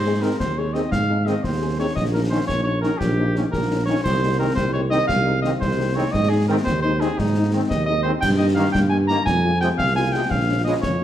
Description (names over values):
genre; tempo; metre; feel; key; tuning
military-style march for wind band; 115 BPM (dotted quarters); 6/8; straight; Ab major; A4 = 440 Hz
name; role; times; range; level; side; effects
mellow cornet; melody; 0.0-11.0 s; Eb4 to Bb5; -24 LUFS; right 1 dB; none
mellow tuba; bass; 0.0-11.0 s; Bb1 to Ab2; -21 LUFS; right 1 dB; none
mellow French horn section; accompaniment; 0.1-11.0 s; Ab3 to Ab4; -29 LUFS; left 6 dB; none
warm trombone section; sustained chords; 0.2-10.7 s; C3 to Db4; -29 LUFS; right 1 dB; none
concert snare drum, concert bass drum and clash cymbals; drums; 0.4-11.0 s; none; -28 LUFS; left 2 dB; none
room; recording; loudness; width
wet recital hall reverb, RT60 1.3 s; none; -18 LUFS; side -11 dB against mid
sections
0.0-11.0 A section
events
none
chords
0.0 Ab; 2.0 Eb7(no3)/Bb; 4.1 Ab/C; 6.1 Ab; 8.2 Eb/G; 9.3 Fm; 10.3 Bbm7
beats
0.40 | 0.92 1.44 | 1.97 2.49 | 3.01 3.53 | 4.05 4.57 | 5.09 5.62 | 6.14 6.66 | 7.18 7.70 | 8.22 8.74 | 9.26 9.79 | 10.31 10.83